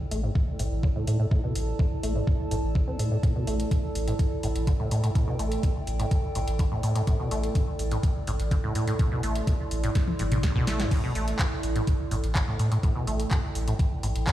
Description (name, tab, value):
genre	acid house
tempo	125 BPM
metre	4/4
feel	straight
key	A minor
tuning	A4 = 440 Hz
part	warbly tape-like pad	texture	0.0-14.3 s	E4 to C6	-34 LUFS	right 2 dB	chorus, built-in reverb, sidechain pumping
part	acid bass, saw	riff	0.1-14.3 s	A1 to C4	-30 LUFS	equal	tube saturation, wide subtle chorus, cassette tape, sidechain pumping, digital delay
part	warm sub bass	bass	0.1-14.3 s	G1 to A2	-29 LUFS	equal	tube saturation, sidechain pumping
part	booming analog drum machine	drums	0.1-14.3 s	crash cymbal, handclaps, hi-hat, snare drum, toms	-35 LUFS	left 1 dB	none
part	electronic kick drum	drums	0.4-14.3 s	none	-25 LUFS	equal	none
room	light reverb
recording	played on a big sound system in a bare room, stone room reverb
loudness	-24 LUFS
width	side -13 dB against mid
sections	0.0-14.3 A section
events	filter sweep on acid bass 0.0-14.3; drum fill 10.0-10.9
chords	0.0 Am7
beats	0.35 0.83 | 1.31 1.79 2.27 2.75 | 3.23 3.71 4.19 4.67 | 5.15 5.63 6.11 6.59 | 7.07 7.55 8.03 8.51 | 8.99 9.47 9.95 10.43 | 10.91 11.39 11.87 12.35 | 12.83 13.31 13.79 14.27